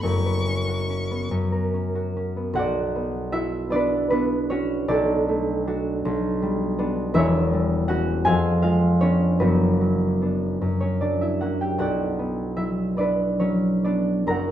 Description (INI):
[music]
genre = classical, romantic duo for violin and harp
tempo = 44-55 BPM (dotted quarters)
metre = 6/8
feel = rubato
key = B minor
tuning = A4 = 441 Hz
[part]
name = rich violin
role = melody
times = 0.0-1.3 s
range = C#6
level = -32 LUFS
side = left 2 dB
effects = none
[part]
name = concert harp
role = accompaniment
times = 0.0-14.5 s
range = E1 to A#5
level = -20 LUFS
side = equal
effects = none
[sound]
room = moderate large studio reverb, RT60 1.3 s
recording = none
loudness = -20 LUFS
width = side -11 dB against mid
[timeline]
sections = 0.0-2.6 A section; 2.6-14.5 B section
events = none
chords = 0.0 F#sus4; 1.3 F#; 2.6 Bm; 4.9 D/B; 6.0 G/B; 7.2 C#dim/E; 8.3 Fdim7; 9.4 Bm/F#; 10.6 F#; 11.8 Bm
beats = | 0.04 1.30 | 2.56 3.72 | 4.89 6.04 | 7.15 8.26 | 9.41 10.62 | 11.81 12.98 | 14.28